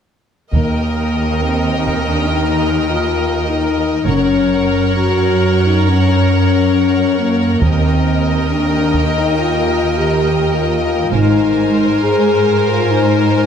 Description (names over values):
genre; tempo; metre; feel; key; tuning
cinematic, epic orchestral film score; 68 BPM; 4/4; straight; unclear; A4 = 441 Hz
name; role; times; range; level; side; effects
rich symphonic violin section; melody; 0.5-13.5 s; Gb5 to Ab5; -27 LUFS; left 2 dB; none
clear symphonic violin section; second line; 0.5-13.5 s; C5 to Eb5; -22 LUFS; left 3 dB; none
rich symphonic viola section; accompaniment; 0.5-13.5 s; Bb4; -22 LUFS; right 1 dB; none
dark French horn section; sustained chords; 0.5-13.5 s; Bb3 to Ab4; -16 LUFS; left 4 dB; none
bright chamber double bass section; bass; 0.5-12.0 s; Gb1 to Eb2; -20 LUFS; right 4 dB; none
rich symphonic cello section; bass; 0.5-13.5 s; Eb2 to Ab2; -18 LUFS; right 4 dB; none
taiko ensemble; drums; 0.5-2.3, 7.6-9.3 s; none; -20 LUFS; right 1 dB; none
room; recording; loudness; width
wet scoring stage reverb, RT60 1.9 s; none; -12 LUFS; side -7 dB against mid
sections
0.5-13.5 A section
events
none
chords
0.5 Eb; 4.1 Gb; 7.6 Eb; 11.1 Abadd9